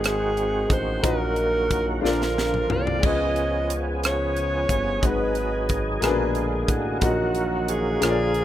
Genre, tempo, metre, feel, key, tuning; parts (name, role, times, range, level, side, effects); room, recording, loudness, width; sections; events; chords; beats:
slow gospel; 60 BPM (dotted quarters); 6/8; straight; Eb minor; A4 = 439 Hz
breathy alto saxophone; melody; 0.0-8.4 s; Gb4 to Eb5; -26 LUFS; equal
bright grand piano; accompaniment; 0.0-8.4 s; Ab2 to Eb5; -28 LUFS; left 5 dB
overdriven tonewheel organ; sustained chords; 0.0-8.4 s; D3 to Ab4; -28 LUFS; right 3 dB; slow rotary speaker, chorus vibrato
smooth synth bass; bass; 0.0-8.4 s; G1 to Db2; -28 LUFS; equal
crisp fusion drum kit; drums; 0.0-8.4 s; crash cymbal, hi-hat, kick drum, rim click, snare drum, toms; -26 LUFS; equal
small room ambience; rough home demo mix; -21 LUFS; side -12 dB against mid
0.0-8.4 A section
drum fill 2.0-3.0
0.0 Ab7; 1.0 Ebm/Bb; 2.0 Bb; 3.0 Db7; 5.0 Abm7; 6.0 Bb7b9; 7.0 Ebm/Bb
0.04 | 1.04 2.04 | 3.03 4.03 | 5.03 6.02 | 7.02 8.02